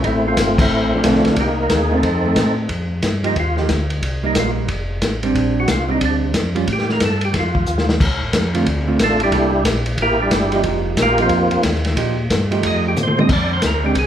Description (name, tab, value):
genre	soul jazz organ trio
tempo	181 BPM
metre	4/4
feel	swing 64% on 8ths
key	F mixolydian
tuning	A4 = 441 Hz
part	percussive tonewheel organ	melody	0.0-14.1 s	F3 to Eb5	-19 LUFS	equal	overdrive, chorus vibrato, stopped rotary speaker
part	mellow tonewheel organ	bass	0.0-14.1 s	F1 to Bb2	-22 LUFS	left 1 dB	chorus vibrato, slow rotary speaker
part	vintage drum kit	drums	0.0-14.1 s	crash cymbal, hi-hat, kick drum, ride cymbal, snare drum, toms	-20 LUFS	left 1 dB	none
part	hollow-body jazz guitar	accompaniment	1.0-13.9 s	D3 to A4	-22 LUFS	right 3 dB	none
room	moderate recital hall reverb, RT60 1.6 s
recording	recorded in a church or concert hall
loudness	-15 LUFS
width	side -10 dB against mid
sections	0.0-2.7 A section; 2.7-13.3 B section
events	band accent 0.5; tonewheel organ solo 2.7-14.1; drum fill 7.7-8.0, 13.0-13.3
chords	0.0 Dm7; 1.4 Cm7; 2.0 F7; 2.7 F9sus4; 4.0 Cm7; 4.7 F; 5.3 Bb69; 6.7 Ebadd9; 8.0 Dm7; 9.3 C13; 10.6 F9sus4; 12.6 F9; 13.3 Bb9